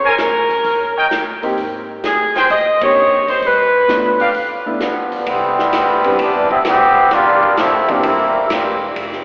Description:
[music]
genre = jazz, big band swing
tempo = 130 BPM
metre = 4/4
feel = swing 68% on 8ths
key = C major from 5.3 s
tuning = A4 = 440 Hz
[part]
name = warm saxophone section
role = melody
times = 0.0-4.3 s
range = Ab4 to Eb5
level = -18 LUFS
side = equal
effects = none
[part]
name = clear trumpet section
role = stabs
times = 0.0-4.3 s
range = G4 to Ab5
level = -24 LUFS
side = equal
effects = none
[part]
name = upright bass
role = bass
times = 0.0-9.2 s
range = E1 to G2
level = -39 LUFS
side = equal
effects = none
[part]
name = swinging big-band drum kit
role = drums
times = 0.2-9.2 s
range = hi-hat, kick drum, ride cymbal, snare drum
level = -27 LUFS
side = equal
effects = none
[part]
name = clear concert grand piano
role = accompaniment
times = 1.4-8.0 s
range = E3 to B4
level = -27 LUFS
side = equal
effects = none
[part]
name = muted trombone section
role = second line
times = 4.8-8.9 s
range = D3 to G4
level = -16 LUFS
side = equal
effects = none
[sound]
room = wet church reverb, RT60 3.6 s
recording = recorded in a church or concert hall, telephone sound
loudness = -15 LUFS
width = mono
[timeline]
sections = 0.0-5.3 A section; 5.3-9.2 B section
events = band accent 2.7; trombone section solo 5.3-9.2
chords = 0.0 Bbm9; 0.6 Eb; 1.6 Abmaj9; 3.4 G7; 5.3 Cmaj7; 7.1 Gm7; 8.0 C7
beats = 0.18 0.65 1.11 | 1.57 2.03 2.50 2.96 | 3.42 3.88 4.35 4.81 | 5.27 5.73 6.20 6.66 | 7.12 7.58 8.04 8.51 | 8.97

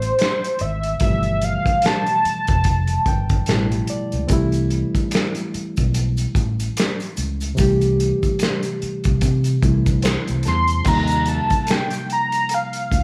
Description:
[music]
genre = R&B, neo-soul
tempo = 73 BPM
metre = 4/4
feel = swing 58% on 16ths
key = C major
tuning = A4 = 439 Hz
[part]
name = warm velvety synth lead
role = melody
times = 0.0-3.5, 10.5-13.0 s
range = C5 to C6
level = -23 LUFS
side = equal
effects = chorus
[part]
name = barky reed electric piano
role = accompaniment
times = 0.0-13.0 s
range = A2 to A5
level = -27 LUFS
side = equal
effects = overdrive
[part]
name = fingered electric bass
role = bass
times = 0.0-13.0 s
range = F1 to C3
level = -24 LUFS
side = equal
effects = none
[part]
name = warm soul drum kit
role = drums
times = 0.0-13.0 s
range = crash cymbal, finger snaps, hi-hat, kick drum, snare drum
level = -24 LUFS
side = equal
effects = none
[part]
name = maracas and finger snaps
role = percussion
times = 4.3-13.0 s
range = none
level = -40 LUFS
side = equal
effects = none
[sound]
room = moderate large studio reverb, RT60 0.8 s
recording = band playing live in one room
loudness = -20 LUFS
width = mono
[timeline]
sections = 0.0-10.9 A section; 10.9-13.0 B section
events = reed electric piano fill 2.6-4.3, 9.6-10.9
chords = 0.0 C6; 1.0 G13; 4.3 C6; 10.9 Eb69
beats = 0.18 | 1.01 1.83 2.65 3.47 | 4.29 5.12 5.94 6.76 | 7.58 8.40 9.22 10.05 | 10.87 11.69 12.51

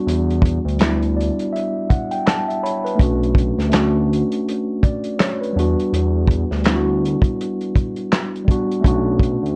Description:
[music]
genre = lo-fi hip hop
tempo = 82 BPM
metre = 4/4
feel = swing 59% on 16ths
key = unclear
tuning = A4 = 438 Hz
[part]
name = mellow tine electric piano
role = accompaniment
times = 0.0-9.6 s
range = G3 to B5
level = -23 LUFS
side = equal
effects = low-pass filter
[part]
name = smooth synth bass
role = bass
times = 0.1-9.6 s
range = B1 to E2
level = -23 LUFS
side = equal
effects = none
[part]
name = warm soul drum kit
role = drums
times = 0.1-9.6 s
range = handclaps, hi-hat, kick drum, snare drum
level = -21 LUFS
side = equal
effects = none
[sound]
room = moderate studio reverb, RT60 0.6 s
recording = worn, warbling old tape, cassette tape, warbly pitch drift, faint mains hum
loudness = -19 LUFS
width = mono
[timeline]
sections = 0.0-9.6 A section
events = tine electric piano fill 0.8-3.0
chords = 0.0 Em9; 3.0 Bm9; 5.6 Em9; 8.8 Bm9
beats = | 0.07 0.80 1.53 2.26 | 2.99 3.72 4.46 5.19 | 5.92 6.65 7.38 8.12 | 8.85

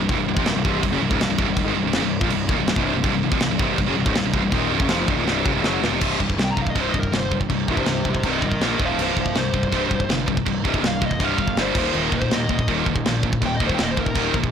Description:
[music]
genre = heavy metal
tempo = 162 BPM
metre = 4/4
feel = straight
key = C minor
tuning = A4 = 438 Hz
[part]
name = distorted electric guitar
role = riff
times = 0.0-14.5 s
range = C2 to Bb3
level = -25 LUFS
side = left 10 dB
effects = distortion
[part]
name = scooped high-gain guitar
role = riff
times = 0.0-14.5 s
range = C2 to Bb3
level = -24 LUFS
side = right 12 dB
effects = distortion
[part]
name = fuzz picked electric bass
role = bass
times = 0.0-14.5 s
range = C1 to Eb2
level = -28 LUFS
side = equal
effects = overdrive
[part]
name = tight metal drum kit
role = drums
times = 0.1-14.5 s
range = china cymbal, crash cymbal, kick drum, snare drum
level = -24 LUFS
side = equal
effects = soft clipping on kick
[part]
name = bluesy overdriven lead guitar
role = melody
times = 6.4-14.3 s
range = G4 to Bb5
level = -27 LUFS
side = left 1 dB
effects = distortion, ping-pong delay
[sound]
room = light reverb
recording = blown-out, overdriven recording, overdrive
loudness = -19 LUFS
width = side -8 dB against mid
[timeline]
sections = 0.0-6.0 A section; 6.0-14.5 B section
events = drum fill 5.3-6.0; lead electric guitar solo 6.0-14.5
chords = 0.0 Cm; 6.0 C5; 8.6 Bb5; 8.8 Eb5; 9.0 C5; 11.6 G5; 11.8 Eb5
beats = | 0.10 0.47 0.84 1.21 | 1.58 1.95 2.32 2.69 | 3.06 3.43 3.80 4.17 | 4.54 4.91 5.28 5.65 | 6.02 6.39 6.76 7.13 | 7.50 7.87 8.24 8.61 | 8.98 9.36 9.73 10.10 | 10.47 10.84 11.21 11.58 | 11.95 12.32 12.69 13.06 | 13.43 13.80 14.17

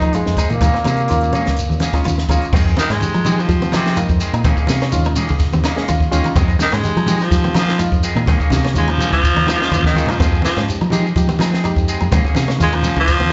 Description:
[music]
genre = afrobeat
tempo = 125 BPM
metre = 4/4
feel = straight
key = F minor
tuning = A4 = 442 Hz
[part]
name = clear trombone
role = melody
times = 0.0-2.1 s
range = Ab3 to Eb4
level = -24 LUFS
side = equal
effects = none
[part]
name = clear tenor saxophone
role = second line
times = 0.0-2.1 s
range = Ab2 to Eb3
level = -34 LUFS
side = equal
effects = none
[part]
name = kora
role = arpeggios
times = 0.0-13.3 s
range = C4 to F4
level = -30 LUFS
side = equal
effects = slapback echo
[part]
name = electric guitar through a small old amp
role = stabs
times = 0.0-13.0 s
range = Eb3 to Ab4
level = -29 LUFS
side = equal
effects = slapback echo
[part]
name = fingered electric bass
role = bass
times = 0.0-13.3 s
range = Db2 to F3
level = -20 LUFS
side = equal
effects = none
[part]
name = compact cocktail drum kit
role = drums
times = 0.0-13.3 s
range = crash cymbal, hi-hat, kick drum, ride cymbal, snare drum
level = -23 LUFS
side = equal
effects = none
[part]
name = shekere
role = percussion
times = 0.0-13.3 s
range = none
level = -29 LUFS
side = equal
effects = none
[part]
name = barky reed electric piano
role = accompaniment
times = 0.1-13.1 s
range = Ab3 to G5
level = -28 LUFS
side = equal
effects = slapback echo
[part]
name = congas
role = percussion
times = 0.5-13.3 s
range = none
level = -26 LUFS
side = equal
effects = none
[part]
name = raspy baritone saxophone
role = melody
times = 2.8-13.3 s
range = C3 to Ab3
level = -21 LUFS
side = equal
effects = slapback echo
[sound]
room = light reverb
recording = live gig heard through the venue's PA, club reverb, nothing above 7.8 kHz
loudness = -16 LUFS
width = mono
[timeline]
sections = 0.0-2.5 A section; 2.5-13.3 B section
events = baritone saxophone solo 2.5-13.3; reed electric piano fill 5.4-6.4; drum fill 9.8-10.2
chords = 0.0 Fm7; 0.6 Eb7sus4; 2.5 Fm7; 4.4 Eb7sus4; 6.4 Fm7; 8.3 Eb7sus4; 10.2 Fm7; 12.1 Eb7sus4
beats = 0.13 | 0.61 1.09 1.57 2.05 | 2.53 3.01 3.48 3.96 | 4.44 4.92 5.40 5.88 | 6.36 6.84 7.32 7.80 | 8.28 8.76 9.23 9.71 | 10.20 10.67 11.15 11.63 | 12.11 12.59 13.07

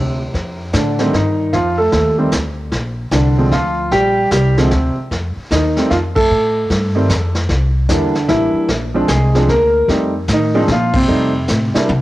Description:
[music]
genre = jazz piano trio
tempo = 151 BPM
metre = 3/4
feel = swing 64% on 8ths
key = F mixolydian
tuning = A4 = 440 Hz
[part]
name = warm baby grand piano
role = melody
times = 0.0-12.0 s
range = C3 to Bb4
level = -15 LUFS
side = right 1 dB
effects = cassette tape
[part]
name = upright bass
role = bass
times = 0.0-12.0 s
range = A1 to C3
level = -18 LUFS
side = equal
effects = transformer saturation
[part]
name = vintage brush drum kit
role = drums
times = 0.3-12.0 s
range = brushed snare drum, crash cymbal, hi-hat, kick drum, snare drum, toms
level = -22 LUFS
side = equal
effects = cassette tape
[sound]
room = light reverb, small room ambience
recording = home recording on cassette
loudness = -13 LUFS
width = side -16 dB against mid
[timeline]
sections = 0.0-12.0 A section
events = band accent 6.1, 10.9; drum fill 11.5-12.0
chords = 0.3 F9; 2.7 Bbadd9; 5.1 F9; 7.5 C9; 8.7 Bb9; 9.9 F9; 10.7 Bbsus2; 11.1 F9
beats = | 0.34 0.74 1.14 | 1.54 1.94 2.33 | 2.73 3.13 3.52 | 3.92 4.32 4.72 | 5.11 5.51 5.91 | 6.31 6.70 7.10 | 7.50 7.90 8.29 | 8.69 9.09 9.49 | 9.89 10.29 10.69 | 11.09 11.49 11.89

